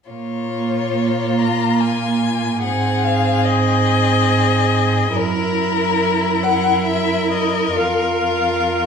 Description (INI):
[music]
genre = classical, slow romantic movement for string quartet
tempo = 70 BPM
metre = 3/4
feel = uneven beats, rubato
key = Bb minor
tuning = A4 = 440 Hz
[part]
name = rich violin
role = melody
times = 0.1-8.9 s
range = Bb4 to Bb5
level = -20 LUFS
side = left 8 dB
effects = none
[part]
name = clear violin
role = second line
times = 0.1-8.9 s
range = F4 to Bb4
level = -23 LUFS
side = left 2 dB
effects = none
[part]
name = rich viola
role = accompaniment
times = 0.1-8.9 s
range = Bb3 to F4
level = -21 LUFS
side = right 3 dB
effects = none
[part]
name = rich cello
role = bass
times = 0.1-8.9 s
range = F2 to Bb2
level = -22 LUFS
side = right 5 dB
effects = none
[sound]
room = wet recital hall reverb, RT60 1.4 s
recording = minimal, uncompressed stereo recording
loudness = -15 LUFS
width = side -6 dB against mid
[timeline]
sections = 0.1-8.9 A section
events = none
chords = 0.1 Bbm; 2.6 Ab; 5.2 Gb7; 7.8 Fsus4